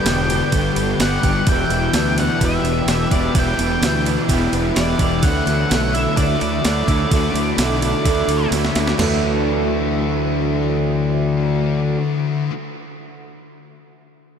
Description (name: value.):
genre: rock, shoegaze and dream pop.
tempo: 128 BPM.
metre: 4/4.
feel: straight.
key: D major.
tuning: A4 = 440 Hz.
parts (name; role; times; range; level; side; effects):
octave-fuzz lead guitar; melody; 0.0-8.5 s; D5 to G5; -25 LUFS; left 2 dB; distortion, diffuse ambient delay.
analog string pad; sustained chords; 0.0-1.4 s; G4 to C#6; -33 LUFS; left 2 dB; ensemble chorus.
picked twelve-string acoustic guitar; arpeggios; 0.0-12.5 s; E3 to G4; -28 LUFS; right 1 dB; analog chorus, diffuse ambient delay.
electric guitar through a small old amp; riff; 0.0-12.5 s; E2 to G4; -24 LUFS; right 10 dB; reverse reverb.
thick fuzz guitar; riff; 0.0-12.5 s; E2 to D4; -22 LUFS; left 8 dB; distortion, ensemble chorus.
fuzz fingered electric bass; bass; 0.0-12.0 s; E1 to D2; -22 LUFS; right 1 dB; overdrive.
crisp 8-bit digital drum machine; drums; 0.1-9.1 s; crash cymbal, kick drum, ride cymbal, snare drum, toms; -22 LUFS; right 1 dB; overdrive.
room: moderate huge ambient reverb, RT60 4.5 s.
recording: dreamy mix soaked in reverb.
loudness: -16 LUFS.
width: side -7 dB against mid.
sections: 0.0-9.0 A section; 9.0-12.8 B section.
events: drum fill 8.5-9.0.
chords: 0.0 G; 1.5 Em7; 5.2 Dadd9.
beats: 0.06 0.53 1.00 | 1.47 1.94 2.41 2.88 | 3.35 3.82 4.29 4.76 | 5.23 5.70 6.17 6.64 | 7.11 7.58 8.05 8.53 | 9.00 9.47 9.94 10.41 | 10.88 11.35 11.82 12.29.